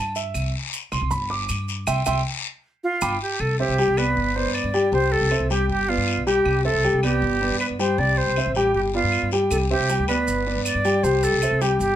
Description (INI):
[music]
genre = latin, Cuban son and guajira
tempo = 157 BPM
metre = 4/4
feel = straight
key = C major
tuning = A4 = 440 Hz
[part]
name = warm concert grand piano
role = arpeggios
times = 0.0-11.9 s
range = G3 to D6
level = -23 LUFS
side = equal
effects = none
[part]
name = upright bass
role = bass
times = 0.0-12.0 s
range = G1 to G2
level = -26 LUFS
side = equal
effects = none
[part]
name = guiro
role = percussion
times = 0.2-12.0 s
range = none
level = -33 LUFS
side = left 7 dB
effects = none
[part]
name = maracas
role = percussion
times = 0.2-3.1, 9.5-12.0 s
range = none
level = -33 LUFS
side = right 4 dB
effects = none
[part]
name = claves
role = percussion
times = 0.3-11.6 s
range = none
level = -34 LUFS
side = left 1 dB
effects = none
[part]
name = silver concert flute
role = melody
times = 2.8-12.0 s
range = F4 to D5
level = -24 LUFS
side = right 2 dB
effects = none
[sound]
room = light reverb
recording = none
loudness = -19 LUFS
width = side -11 dB against mid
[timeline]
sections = 0.0-3.4 A section; 3.4-12.0 B section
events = grand piano solo 0.0-3.4; band accent 1.9-3.4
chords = 0.3 C; 1.1 G5; 1.9 C; 2.6 G7; 3.4 C; 4.2 G; 4.9 C; 5.7 G7; 6.5 C; 7.2 G; 8.0 C; 8.7 G7; 9.5 C; 10.3 G; 11.0 C